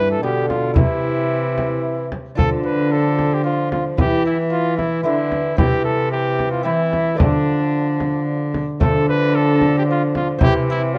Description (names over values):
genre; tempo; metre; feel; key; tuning
classical, renaissance-style consort dance; 112 BPM; 3/4; straight; D dorian; A4 = 440 Hz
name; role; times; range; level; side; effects
clear cornet; melody; 0.0-11.0 s; D4 to B4; -24 LUFS; equal; none
lute; accompaniment; 0.0-11.0 s; G2 to F4; -28 LUFS; equal; none
warm bassoon; accompaniment; 0.0-11.0 s; D3 to G3; -27 LUFS; equal; none
dark cello; bass; 0.0-11.0 s; G2 to E3; -23 LUFS; equal; none
frame drum; percussion; 0.5-10.7 s; none; -22 LUFS; equal; none
room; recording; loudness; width
moderate stone room reverb, RT60 1.1 s; dark, warm production; -19 LUFS; mono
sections
0.0-8.8 A section; 8.8-11.0 A section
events
none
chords
0.0 G7; 0.8 C; 2.4 Dm; 4.0 E5; 5.6 C; 7.2 Dm; 10.4 C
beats
0.23 | 0.76 1.30 1.84 | 2.38 2.92 3.45 | 3.99 4.52 5.05 | 5.59 6.12 6.65 | 7.19 7.73 8.27 | 8.81 9.35 9.88 | 10.41 10.95